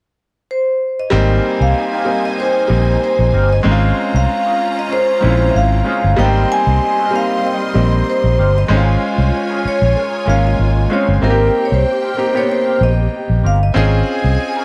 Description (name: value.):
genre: soul.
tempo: 95 BPM.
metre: 4/4.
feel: swing 54% on 16ths.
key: Ab major.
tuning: A4 = 440 Hz.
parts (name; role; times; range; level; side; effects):
vibraphone with medium hard mallets; melody; 0.5-14.6 s; Bb4 to Ab5; -20 LUFS; equal; none.
rich symphonic string section; second line; 1.1-14.6 s; G3 to C6; -27 LUFS; equal; none.
bright grand piano; accompaniment; 1.1-14.6 s; G3 to C5; -21 LUFS; equal; none.
electric guitar through a small old amp; riff; 1.1-14.6 s; C4 to Bb4; -30 LUFS; equal; wah.
vintage muted fingered electric bass; bass; 1.1-14.4 s; G1 to C2; -16 LUFS; equal; none.
room: little or no reverb.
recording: dry, close 1970s-style studio recording.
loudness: -15 LUFS.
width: mono.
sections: 0.0-1.1 A section; 1.1-11.2 B section; 11.2-14.6 C section.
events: none.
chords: 0.0 N.C.; 1.1 Abmaj9; 3.6 Bbm7/Ab; 6.2 Abmaj9; 8.7 Bbm7/Ab; 11.2 Abmaj9 (rootless); 13.8 Bbm7/Ab.